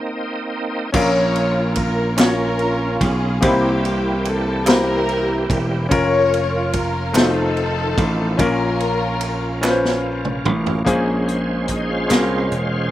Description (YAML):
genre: slow gospel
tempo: 48 BPM (dotted quarters)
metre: 6/8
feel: straight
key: Bb minor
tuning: A4 = 440 Hz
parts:
  - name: bright tonewheel organ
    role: sustained chords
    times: 0.0-12.9 s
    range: Eb3 to C5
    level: -27 LUFS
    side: right 2 dB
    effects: fast rotary speaker, overdrive, chorus vibrato
  - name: dark studio string section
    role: melody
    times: 0.9-10.1 s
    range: Bb3 to Db5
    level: -22 LUFS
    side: left 1 dB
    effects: none
  - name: clear concert grand piano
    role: accompaniment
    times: 0.9-12.9 s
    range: Bb2 to Db5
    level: -22 LUFS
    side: left 2 dB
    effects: none
  - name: slap bass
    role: bass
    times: 0.9-12.9 s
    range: E1 to C2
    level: -22 LUFS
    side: right 1 dB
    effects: none
  - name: swinging big-band drum kit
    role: drums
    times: 0.9-12.7 s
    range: crash cymbal, hi-hat, kick drum, ride cymbal, snare drum, toms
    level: -22 LUFS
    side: equal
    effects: none
  - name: group handclap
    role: percussion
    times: 2.2-12.5 s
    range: none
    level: -26 LUFS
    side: right 3 dB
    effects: none
  - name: mellow French horn section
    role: sustained chords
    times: 10.9-12.9 s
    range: Ab3 to C5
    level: -29 LUFS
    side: right 1 dB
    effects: none
room: little or no reverb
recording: none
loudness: -16 LUFS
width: side -13 dB against mid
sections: 0.9-10.9 A section; 10.9-12.9 B section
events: stop 0.0-0.9; drum fill 9.6-10.9; tonewheel organ solo 10.9-12.9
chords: 0.0 F7sus4 (rootless); 0.9 Bbm; 3.4 C7; 5.9 Bbm/F; 7.1 F7; 8.4 Bbm; 10.9 Bbm9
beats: | 0.95 2.19 | 3.43 4.67 | 5.91 7.15 | 8.39 9.63 | 10.87 12.11